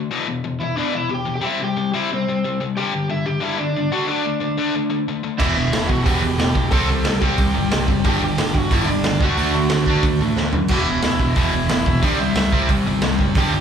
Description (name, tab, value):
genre	punk rock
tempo	181 BPM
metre	4/4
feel	straight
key	unclear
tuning	A4 = 444 Hz
part	distorted electric guitar	riff	0.0-13.6 s	E2 to D4	-23 LUFS	left 7 dB	overdrive
part	overdriven semi-hollow guitar	melody	0.6-13.6 s	C4 to A5	-24 LUFS	right 1 dB	slapback echo
part	cranked stack guitar	riff	5.4-13.6 s	E2 to D4	-24 LUFS	right 11 dB	overdrive, slapback echo
part	distorted electric guitar	riff	5.4-13.6 s	E2 to D4	-26 LUFS	right 1 dB	overdrive, slapback echo
part	growling picked electric bass	bass	5.4-13.6 s	E1 to F#2	-23 LUFS	right 1 dB	overdrive
part	raw garage drum kit	drums	5.4-13.4 s	crash cymbal, hi-hat, kick drum, snare drum, toms	-21 LUFS	right 1 dB	none
room	studio reverb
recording	live gig heard through the venue's PA, club reverb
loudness	-17 LUFS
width	side -8 dB against mid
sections	0.0-13.6 A section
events	drum fill 10.4-10.7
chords	0.1 Em; 1.4 C; 2.8 G5; 3.9 D5; 5.4 Em; 6.7 C5; 8.1 G5; 9.2 D; 10.7 E5; 12.0 C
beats	| 0.10 0.43 0.77 1.10 | 1.43 1.76 2.09 2.42 | 2.75 3.08 3.42 3.75 | 4.08 4.41 4.74 5.07 | 5.40 5.74 6.07 6.40 | 6.73 7.06 7.39 7.73 | 8.06 8.39 8.72 9.05 | 9.38 9.72 10.05 10.38 | 10.71 11.04 11.37 11.71 | 12.04 12.37 12.70 13.03 | 13.36